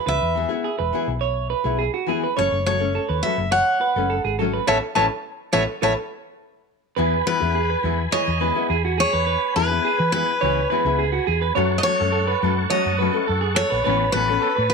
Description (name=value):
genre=highlife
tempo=104 BPM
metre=4/4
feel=straight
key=E major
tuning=A4 = 441 Hz
part: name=clean electric guitar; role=arpeggios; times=0.0-14.7 s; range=F#4 to C#5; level=-24 LUFS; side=right 10 dB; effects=slapback echo
part: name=picked steel-string acoustic guitar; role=melody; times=0.1-14.7 s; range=B4 to A5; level=-22 LUFS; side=left 2 dB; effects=none
part: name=hollow-body short-scale fingered electric bass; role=bass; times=0.1-14.7 s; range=E1 to E3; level=-25 LUFS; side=left 1 dB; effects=none
part: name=nylon-string guitar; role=accompaniment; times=0.3-14.7 s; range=E3 to A4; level=-26 LUFS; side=left 15 dB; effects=none
part: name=tonewheel organ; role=sustained chords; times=7.0-14.7 s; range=C#5 to C#6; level=-30 LUFS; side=equal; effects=chorus vibrato, fast rotary speaker
room=light reverb, small room ambience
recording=1960s-style stereo with parts hard left and right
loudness=-19 LUFS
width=side -4 dB against mid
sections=0.0-7.0 A section; 7.0-14.7 B section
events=band accent 4.7-7.0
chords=0.0 E; 2.4 F#m; 4.7 Aadd9; 7.0 E; 11.6 F#m; 13.9 Aadd9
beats=| 0.07 0.65 1.22 1.80 | 2.37 2.95 3.52 4.10 | 4.67 5.25 5.83 6.40 | 6.97 7.55 8.12 8.70 | 9.27 9.85 10.42 10.99 | 11.57 12.14 12.71 13.29 | 13.86 14.43